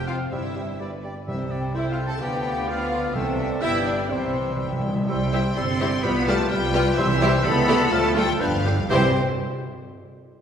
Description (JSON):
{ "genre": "quick classical-period movement for symphony orchestra", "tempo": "118-130 BPM", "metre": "2/4", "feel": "straight", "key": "C major", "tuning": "A4 = 440 Hz", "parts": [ { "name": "clear studio violin section", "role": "melody", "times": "0.0-9.2 s", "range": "A4 to C6", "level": "-32 LUFS", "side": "left 4 dB", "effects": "none" }, { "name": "rich studio violin section", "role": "second line", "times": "0.0-9.2 s", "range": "F4 to A5", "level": "-33 LUFS", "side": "left 3 dB", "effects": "none" }, { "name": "rich studio viola section", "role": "accompaniment", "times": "0.0-9.2 s", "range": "G3 to A4", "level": "-30 LUFS", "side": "equal", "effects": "none" }, { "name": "mellow French horn section", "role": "sustained chords", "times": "0.0-9.1 s", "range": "D3 to F4", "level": "-30 LUFS", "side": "left 3 dB", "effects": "none" }, { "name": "mellow trumpet section", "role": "stabs", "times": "0.0-9.1 s", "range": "A4 to A5", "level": "-31 LUFS", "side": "left 1 dB", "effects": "none" }, { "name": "rich studio cello section", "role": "bass", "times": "0.0-9.2 s", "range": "F2 to C4", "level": "-29 LUFS", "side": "right 2 dB", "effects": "none" }, { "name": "warm studio double bass section", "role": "bass", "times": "0.0-9.2 s", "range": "F1 to D2", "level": "-28 LUFS", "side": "right 2 dB", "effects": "none" }, { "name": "clear oboe", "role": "second line", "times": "0.1-9.1 s", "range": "G4 to G5", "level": "-33 LUFS", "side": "right 1 dB", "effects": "none" }, { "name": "dark clarinet", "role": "second line", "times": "0.1-9.1 s", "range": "G4 to D5", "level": "-35 LUFS", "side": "left 1 dB", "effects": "none" }, { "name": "mellow hollow large flute ensemble", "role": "second line", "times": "0.1-9.2 s", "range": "F5 to G6", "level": "-34 LUFS", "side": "left 2 dB", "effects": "none" }, { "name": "mellow bassoon", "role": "accompaniment", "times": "0.1-9.1 s", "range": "D3 to C4", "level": "-32 LUFS", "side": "right 2 dB", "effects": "none" }, { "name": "timpani", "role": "percussion", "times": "1.3-9.1 s", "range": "G2 to C3", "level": "-30 LUFS", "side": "equal", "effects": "none" } ], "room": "wet scoring stage reverb, RT60 1.9 s", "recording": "heard from further back in the room", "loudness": "-20 LUFS", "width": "side -8 dB against mid", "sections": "0.0-5.1 A section; 5.1-8.9 B section; 8.9-9.9 C section", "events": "timpani fill 4.1-5.1, 8.4-8.9", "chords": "0.3 C/G; 0.8 G; 1.3 C; 2.2 Bdim/D; 3.1 C; 3.6 G; 4.1 C; 6.0 G7/C; 7.0 C; 7.4 A7/C#; 7.9 Dm; 8.4 G7; 8.9 C" }